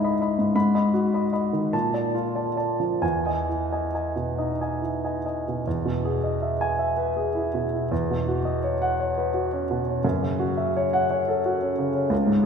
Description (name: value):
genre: classical, impressionist solo piano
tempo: 43-62 BPM (dotted quarters)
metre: 6/8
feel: rubato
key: E lydian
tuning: A4 = 440 Hz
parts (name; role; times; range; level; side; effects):
- warm concert grand piano; solo; 0.0-12.5 s; C#2 to B5; -22 LUFS; equal; none
room: wet concert hall reverb, RT60 2.6 s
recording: recorded in a church or concert hall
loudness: -22 LUFS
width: side -6 dB against mid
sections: 0.0-5.7 A section; 5.7-12.5 A section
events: none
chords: 0.0 C#m9; 0.5 G#m7; 1.7 A#maj7; 3.0 Emaj7; 7.9 C#m11/E; 10.0 F#m7